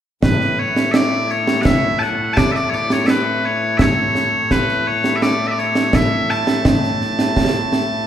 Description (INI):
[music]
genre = scottish traditional, Scottish pipe music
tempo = 84 BPM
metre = 3/4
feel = straight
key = A major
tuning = A4 = 443 Hz
[part]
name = loud bright bagpipes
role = melody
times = 0.2-8.1 s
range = A2 to A5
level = -18 LUFS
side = left 1 dB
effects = tape echo
[part]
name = concert snare drum and concert bass drum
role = drums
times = 0.2-7.9 s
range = none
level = -18 LUFS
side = right 1 dB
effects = none
[sound]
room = wet recital hall reverb, RT60 1.8 s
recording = heard from further back in the room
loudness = -15 LUFS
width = side -10 dB against mid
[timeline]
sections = 0.2-8.1 A section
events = none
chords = none